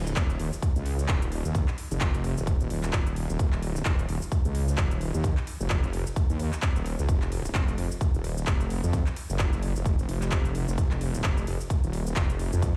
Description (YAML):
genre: bass house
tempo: 130 BPM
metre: 4/4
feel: swing 58% on 16ths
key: Eb minor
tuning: A4 = 440 Hz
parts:
  - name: wobble bass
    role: bass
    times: 0.0-12.7 s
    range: Eb1 to F2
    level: -31 LUFS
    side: equal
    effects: chorus, overdrive, sidechain pumping
  - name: big-room dance drum kit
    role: drums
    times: 0.1-12.7 s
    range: handclaps, hi-hat, ride cymbal, shaker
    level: -38 LUFS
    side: equal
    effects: none
  - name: electronic kick drum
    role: drums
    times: 0.2-12.7 s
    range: none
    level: -28 LUFS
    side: equal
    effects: none
room: digital ambience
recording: played on a big sound system in a bare room, large studio reverb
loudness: -27 LUFS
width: mono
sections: 0.0-12.8 A section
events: none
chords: none